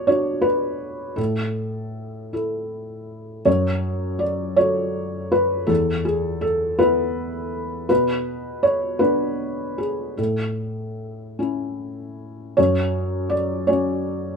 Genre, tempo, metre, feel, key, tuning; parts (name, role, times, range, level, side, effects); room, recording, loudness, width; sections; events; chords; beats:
neoclassical minimalist piano; 54 BPM (dotted quarters); 6/8; rubato; A major; A4 = 440 Hz
felt-muted upright piano; solo; 0.0-14.4 s; E2 to D5; -20 LUFS; equal
light reverb; minimal, uncompressed stereo recording; -20 LUFS; side -5 dB against mid
0.0-12.6 A section; 12.6-14.4 A section
0.0 Bm; 1.2 A5; 3.5 F#m; 5.7 E5; 7.9 Bm; 10.2 A; 12.6 F#5
0.07 | 1.18 2.32 | 3.46 4.58 | 5.69 6.79 | 7.89 8.99 | 10.18 11.38 | 12.57 13.69